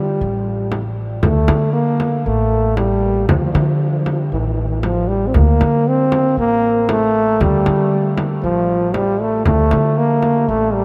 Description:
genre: Arabic maqam ensemble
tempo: 117 BPM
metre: 4/4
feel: straight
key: D maqam bayati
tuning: A4 = 440 Hz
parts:
  - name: warm trombone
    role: melody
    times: 0.0-10.8 s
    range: E3-50c to C4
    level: -19 LUFS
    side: equal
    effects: none
  - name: upright bass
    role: bass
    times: 0.0-10.8 s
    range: A1 to D3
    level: -21 LUFS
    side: equal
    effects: none
  - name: frame drum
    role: percussion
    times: 0.7-10.3 s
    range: none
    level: -25 LUFS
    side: equal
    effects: none
room: wet huge ambient reverb, RT60 8.1 s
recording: in a vast, echoing space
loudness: -16 LUFS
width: mono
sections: 0.0-10.8 A section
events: none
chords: none

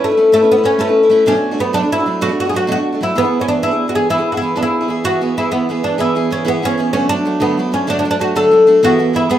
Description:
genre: celtic folk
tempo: 127 BPM (dotted quarters)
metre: 12/8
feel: straight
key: E mixolydian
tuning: A4 = 440 Hz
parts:
  - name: oud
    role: melody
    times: 0.0-9.4 s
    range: A3 to A4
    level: -14 LUFS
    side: left 1 dB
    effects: none
  - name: picked steel-string acoustic guitar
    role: accompaniment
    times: 0.0-9.4 s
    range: B2 to B4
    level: -18 LUFS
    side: right 3 dB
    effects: none
room: moderate studio reverb, RT60 0.5 s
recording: minimal, uncompressed stereo recording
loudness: -12 LUFS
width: side -11 dB against mid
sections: 0.0-5.0 A section; 5.0-9.4 B section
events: none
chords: 0.0 Aadd9; 1.3 Bm7; 3.1 E; 6.9 D; 8.8 E

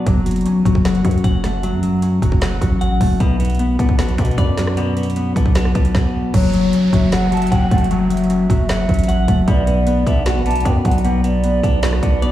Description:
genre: hip hop, trap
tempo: 153 BPM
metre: 4/4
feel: half-time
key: F# minor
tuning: A4 = 438 Hz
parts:
  - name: Celtic harp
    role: accompaniment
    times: 0.0-12.3 s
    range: B2 to F#5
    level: -21 LUFS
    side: left 1 dB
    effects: none
  - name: clean electric guitar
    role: arpeggios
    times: 0.0-12.3 s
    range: F#3 to F#5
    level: -21 LUFS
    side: left 2 dB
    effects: phaser, digital delay
  - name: growling 808-style bass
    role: bass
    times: 0.1-12.3 s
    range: F#1 to B2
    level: -20 LUFS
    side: equal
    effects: none
  - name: trap drum kit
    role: drums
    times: 0.1-12.3 s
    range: crash cymbal, hi-hat, kick drum, rim click, snare drum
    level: -18 LUFS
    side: equal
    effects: none
  - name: mellow hollow polished pan flute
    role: second line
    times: 6.3-12.2 s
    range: C#5 to A5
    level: -23 LUFS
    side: right 2 dB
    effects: digital delay
  - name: downlifter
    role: sound effects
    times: 6.3-9.5 s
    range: none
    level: -33 LUFS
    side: right 2 dB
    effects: none
room: light reverb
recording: played on a big sound system in a bare room, large studio reverb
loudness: -14 LUFS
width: side -13 dB against mid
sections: 0.0-6.3 A section; 6.3-12.3 B section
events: stop 5.9-6.3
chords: 0.1 F#m; 3.2 Bm; 6.3 F#m; 9.5 Bm

